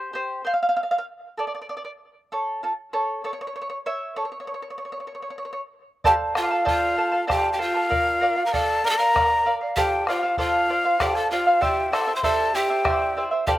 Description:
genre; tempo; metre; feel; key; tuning
andean folk, Andean ensemble; 64 BPM (dotted quarters); 6/8; straight; unclear; A4 = 440 Hz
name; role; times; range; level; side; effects
charango; accompaniment; 0.0-13.6 s; E4 to A5; -24 LUFS; right 1 dB; slapback echo
bombo; percussion; 6.0-13.6 s; none; -29 LUFS; left 1 dB; none
breathy quena; melody; 6.1-13.5 s; F5 to C6; -23 LUFS; left 2 dB; slapback echo
breathy pan flute; second line; 6.1-13.5 s; F4 to C5; -28 LUFS; right 2 dB; slapback echo
room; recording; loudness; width
little or no reverb; recorded outdoors, with no room sound; -20 LUFS; side -14 dB against mid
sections
0.0-6.0 A section; 6.0-13.6 B section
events
charango solo 0.0-6.0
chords
0.0 F5; 2.3 A; 6.0 F; 7.9 Bb; 9.8 F; 11.6 C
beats
| 0.43 1.37 | 2.30 3.24 | 4.17 5.11 | 6.04 6.97 | 7.91 8.84 | 9.76 10.69 | 11.62 12.54 | 13.47

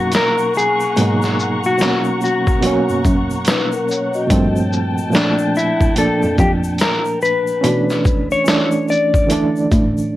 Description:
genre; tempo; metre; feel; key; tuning
lo-fi hip hop; 72 BPM; 4/4; swing 61% on 16ths; unclear; A4 = 440 Hz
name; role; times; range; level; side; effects
mellow electric guitar; melody; 0.0-9.7 s; D4 to D5; -18 LUFS; left 3 dB; low-pass filter
barky reed electric piano; accompaniment; 0.0-10.2 s; Bb2 to D#4; -19 LUFS; right 2 dB; overdrive, fast tremolo, low-pass filter
warm studio string section; sustained chords; 0.0-7.6 s; A#3 to C#6; -26 LUFS; left 2 dB; low-pass filter
muted cello; bass; 0.0-10.1 s; F2 to B2; -20 LUFS; equal; none
trip hop sampler-style drum kit; drums; 0.1-10.0 s; hi-hat, kick drum, shaker, snare drum; -18 LUFS; equal; vintage 12-bit sampler grit
egg shaker; percussion; 0.1-10.1 s; none; -39 LUFS; left 6 dB; none
vibraphone with soft mallets; second line; 3.5-4.5 s; C#4 to D#5; -23 LUFS; left 3 dB; low-pass filter, tape echo
room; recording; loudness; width
light reverb; vinyl crackle; -14 LUFS; side -15 dB against mid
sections
0.0-10.2 A section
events
none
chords
0.0 G#m11; 4.3 Gm11; 7.6 Bm11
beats
0.13 | 0.97 1.80 2.63 3.47 | 4.30 5.13 5.97 6.80 | 7.63 8.47 9.30 10.13

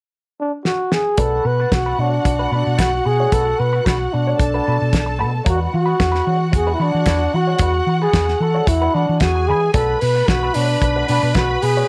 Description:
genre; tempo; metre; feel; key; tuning
disco; 112 BPM; 4/4; straight; B dorian; A4 = 438 Hz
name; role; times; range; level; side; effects
breathy flugelhorn; melody; 0.4-11.9 s; D4 to B4; -22 LUFS; equal; none
damped 70s drum kit; drums; 0.7-11.8 s; hi-hat, kick drum, snare drum; -22 LUFS; equal; none
clear studio string section; second line; 1.2-11.9 s; F#4 to B5; -28 LUFS; equal; none
clean electric guitar; accompaniment; 1.2-11.9 s; G#3 to C#5; -29 LUFS; equal; wah, subtle chorus
hollow-body short-scale fingered electric bass; bass; 1.2-11.8 s; B1 to E3; -22 LUFS; equal; none
room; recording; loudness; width
small room reverb; none; -18 LUFS; mono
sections
0.0-1.2 A section; 1.2-11.9 B section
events
drum fill 0.6-1.2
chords
0.0 N.C.; 1.2 Bm7; 5.5 E9; 9.7 Bm7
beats
0.12 0.65 | 1.18 1.72 2.25 2.79 | 3.32 3.86 4.39 4.93 | 5.46 6.00 6.53 7.07 | 7.60 8.14 8.67 9.21 | 9.74 10.28 10.82 11.35

